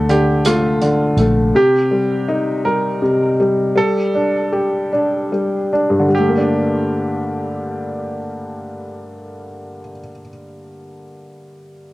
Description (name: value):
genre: six-eight pop ballad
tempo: 48-55 BPM (dotted quarters)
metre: 6/8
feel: straight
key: G minor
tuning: A4 = 441 Hz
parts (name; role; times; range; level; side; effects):
- bright grand piano; melody; 0.0-10.1 s; F4 to Bb4; -22 LUFS; right 2 dB; cassette tape, analog delay
- felt-muted upright piano; accompaniment; 0.0-11.9 s; G2 to G4; -17 LUFS; left 1 dB; cassette tape
- vintage muted fingered electric bass; bass; 0.0-1.5 s; Bb1 to D2; -20 LUFS; equal; none
- unplugged drum kit; drums; 0.1-1.3 s; hi-hat, rim click; -24 LUFS; right 1 dB; cassette tape
room: moderate booth ambience, RT60 0.2 s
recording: home recording on cassette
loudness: -14 LUFS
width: side -18 dB against mid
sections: 0.0-6.1 A section; 6.1-11.1 B section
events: slowing down 1.5-6.1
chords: 0.0 Dm; 1.5 Cm; 3.8 Gsus2; 6.1 Gmadd9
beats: 0.45 | 1.54 2.63 | 3.76 4.92 | 6.13 7.37 | 8.61 9.86